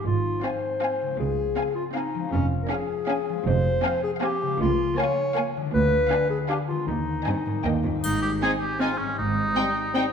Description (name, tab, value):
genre	cinematic, playful, whimsical film cue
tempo	158 BPM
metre	3/4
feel	straight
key	Ab major from 3.5 s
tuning	A4 = 440 Hz
part	dark clarinet	second line	0.0-7.6 s	Db4 to Db5	-26 LUFS	left 2 dB	none
part	concert harp	arpeggios	0.0-10.1 s	Ab2 to Ab4	-32 LUFS	left 6 dB	none
part	warm studio cello section	bass	0.0-9.5 s	Db2 to Ab2	-31 LUFS	right 3 dB	none
part	warm studio double bass section	bass	0.0-9.5 s	F1 to Eb2	-28 LUFS	right 4 dB	none
part	rich studio violin section	second line	0.4-10.0 s	Eb4 to F5	-36 LUFS	left 2 dB	none
part	warm studio viola section	accompaniment	0.4-10.0 s	Bb3 to D4	-32 LUFS	right 2 dB	none
part	warm studio violin section	melody	0.5-10.0 s	G5 to Ab5	-32 LUFS	left 3 dB	none
part	warm oboe	second line	8.0-10.1 s	Db4 to Ab4	-26 LUFS	right 1 dB	none
part	triangle	percussion	8.0-8.8 s	none	-36 LUFS	left 5 dB	none
part	warm French horn section	sustained chords	8.4-10.1 s	G3 to C4	-32 LUFS	left 3 dB	none
room	moderate scoring stage reverb, RT60 1.8 s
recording	none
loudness	-22 LUFS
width	side -7 dB against mid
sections	0.0-8.0 A section; 8.0-10.1 B section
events	none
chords	0.1 Fm/Ab; 1.2 Dbmaj7; 2.3 Db/F; 3.5 Fm; 4.6 Bbm7/Db; 5.7 Ddim7; 6.9 Ab/Eb; 7.7 Eb; 8.0 Ab